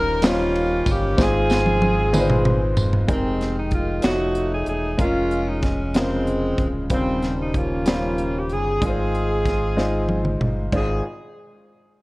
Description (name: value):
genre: slow gospel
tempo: 63 BPM (dotted quarters)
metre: 6/8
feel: straight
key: Ab major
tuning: A4 = 439 Hz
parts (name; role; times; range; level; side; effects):
- warm saxophone section; melody; 0.0-11.0 s; Eb3 to Bb4; -23 LUFS; equal; none
- clear upright piano; accompaniment; 0.0-11.0 s; Ab1 to Db5; -25 LUFS; equal; none
- sub bass with octave; bass; 0.0-11.0 s; D1 to Ab1; -26 LUFS; equal; none
- crisp fusion drum kit; drums; 0.2-10.9 s; crash cymbal, hi-hat, kick drum, ride cymbal, snare drum, toms; -22 LUFS; equal; none
- tambourine; percussion; 0.2-3.1 s; none; -36 LUFS; right 3 dB; none
room: light reverb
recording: worn, warbling old tape, cassette tape, warbly pitch drift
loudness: -18 LUFS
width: side -22 dB against mid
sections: 0.0-3.1 A section; 3.1-10.7 B section; 10.7-12.0 C section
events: drum fill 1.2-3.1, 9.8-10.7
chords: 0.0 Eb13; 1.2 Ab6; 3.1 Fm11; 4.0 Faug7; 5.0 Bbm7/F; 6.9 Eb13; 8.8 Ab6